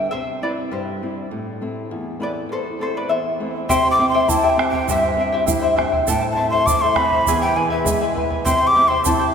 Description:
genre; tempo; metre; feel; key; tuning
andean folk, Andean ensemble; 101 BPM; 2/4; straight; unclear; A4 = 437 Hz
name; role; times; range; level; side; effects
charango; accompaniment; 0.0-9.3 s; E4 to A5; -21 LUFS; left 2 dB; none
flamenco guitar; accompaniment; 0.0-9.3 s; E2 to E4; -26 LUFS; equal; none
breathy large quena; melody; 3.7-9.3 s; E5 to D6; -18 LUFS; equal; none
bombo; percussion; 3.7-9.2 s; none; -26 LUFS; right 3 dB; none
egg shaker; percussion; 3.7-9.2 s; none; -29 LUFS; right 9 dB; none
room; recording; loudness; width
wet cathedral reverb, RT60 4.5 s; recorded in a church or concert hall; -16 LUFS; side -7 dB against mid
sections
0.0-3.7 A section; 3.7-9.3 B section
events
charango solo 0.0-3.7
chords
0.1 C; 1.3 Am; 3.7 C; 6.1 Am; 7.3 E; 8.5 C

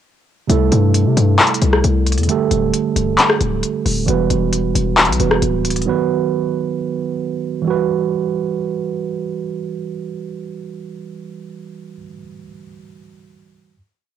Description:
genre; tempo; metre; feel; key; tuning
hip hop, trap; 134 BPM; 4/4; half-time; E minor; A4 = 440 Hz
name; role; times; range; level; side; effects
mellow tine electric piano; accompaniment; 0.5-13.8 s; C3 to B4; -20 LUFS; right 8 dB; overdrive, low-pass filter, cassette tape
hard-hitting 808-style bass; bass; 0.5-5.9 s; C1 to C3; -17 LUFS; left 2 dB; none
big-room dance drum kit; drums; 0.5-5.9 s; handclaps, hi-hat, rim click; -16 LUFS; left 2 dB; cassette tape
room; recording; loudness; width
little or no reverb; home recording on cassette; -15 LUFS; side -9 dB against mid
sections
0.5-7.7 hook; 7.7-11.2 final chord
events
none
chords
0.5 C6; 2.3 Dsus4; 4.1 Emadd9; 5.9 B; 7.7 Emadd9

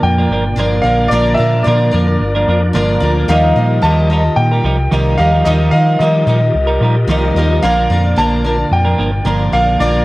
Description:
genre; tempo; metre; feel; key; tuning
rock; 111 BPM; 4/4; straight; unclear; A4 = 444 Hz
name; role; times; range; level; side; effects
clear concert grand piano; melody; 0.0-10.0 s; D5 to A5; -17 LUFS; equal; none
picked twelve-string acoustic guitar; accompaniment; 0.0-10.0 s; Eb3 to Eb5; -20 LUFS; left 3 dB; none
bright tonewheel organ; sustained chords; 0.0-10.0 s; D4 to Eb5; -26 LUFS; equal; slow rotary speaker, overdrive, chorus vibrato
twelve-string electric guitar; riff; 0.0-10.0 s; Bb2 to Bb4; -17 LUFS; right 2 dB; none
hollow-body short-scale fingered electric bass; bass; 0.0-10.0 s; G1 to Eb3; -14 LUFS; equal; none
room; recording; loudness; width
light reverb, small room reverb; worn, warbling old tape, cassette tape, warbly pitch drift; -11 LUFS; side -19 dB against mid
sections
0.0-10.0 A section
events
none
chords
0.0 Bb; 3.3 Ebadd9; 7.6 Bb

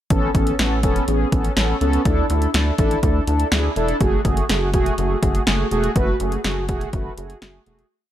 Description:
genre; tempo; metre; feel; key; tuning
synth-pop; 123 BPM; 4/4; straight; unclear; A4 = 439 Hz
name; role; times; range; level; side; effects
mellow synth brass; accompaniment; 0.1-7.9 s; A3 to B4; -22 LUFS; right 1 dB; chorus
rubbery square bass; bass; 0.1-7.8 s; E1 to D2; -22 LUFS; equal; none
punchy analog drum machine; drums; 0.1-7.9 s; hi-hat, kick drum, snare drum; -21 LUFS; equal; overdrive
room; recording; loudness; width
light reverb; none; -17 LUFS; side -12 dB against mid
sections
0.1-7.9 verse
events
fade-out 6.0-7.9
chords
0.1 Aadd9; 2.1 Dsus2; 4.0 F#madd9

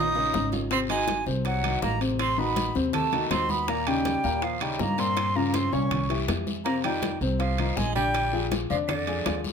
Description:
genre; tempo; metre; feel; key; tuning
Afro-Cuban jazz; 161 BPM; 4/4; straight; Eb mixolydian; A4 = 440 Hz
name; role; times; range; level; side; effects
concert flute; melody; 0.0-9.4 s; D5 to Eb6; -29 LUFS; right 1 dB; none
bright tenor saxophone; second line; 0.0-9.4 s; D3 to Eb4; -33 LUFS; right 8 dB; none
dark baby grand piano; accompaniment; 0.0-9.5 s; Bb2 to D5; -29 LUFS; left 4 dB; none
upright bass; bass; 0.0-9.5 s; Ab1 to G2; -31 LUFS; right 1 dB; none
bongos; percussion; 0.2-9.5 s; none; -35 LUFS; left 8 dB; none
congas; percussion; 0.2-9.5 s; none; -35 LUFS; equal; none
timbales; percussion; 0.2-9.4 s; none; -36 LUFS; right 8 dB; none
guiro; percussion; 0.3-9.5 s; none; -39 LUFS; left 5 dB; none
room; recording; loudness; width
moderate club reverb, RT60 0.7 s; none; -23 LUFS; side -6 dB against mid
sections
0.0-9.5 A section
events
drum fill 0.0-0.7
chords
0.0 Eb5; 0.7 Ab7; 2.2 Adim7; 3.7 Eb7; 5.2 Gm7b5; 5.9 C7b9; 6.7 F5; 8.1 Bb6

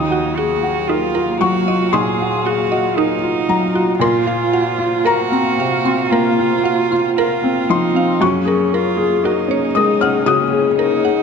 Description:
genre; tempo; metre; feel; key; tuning
neoclassical piano and strings; 58 BPM; 4/4; rubato; Bb minor; A4 = 441 Hz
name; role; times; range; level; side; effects
muted cello; second line; 0.0-11.2 s; Db4 to Ab4; -20 LUFS; right 6 dB; none
felt-muted upright piano; accompaniment; 0.0-11.2 s; Eb2 to F6; -16 LUFS; left 3 dB; none
muted chamber string section; sustained chords; 0.0-11.2 s; Gb3 to F5; -25 LUFS; left 2 dB; none
mallet-like synth pluck; arpeggios; 0.1-11.2 s; Eb4 to C6; -24 LUFS; right 4 dB; chorus, slapback echo
room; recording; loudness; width
moderate concert hall reverb, RT60 2.3 s; none; -14 LUFS; side -6 dB against mid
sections
0.0-11.2 A section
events
none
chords
0.0 Ebmadd9; 4.0 Bbsus2; 8.2 Gbadd9

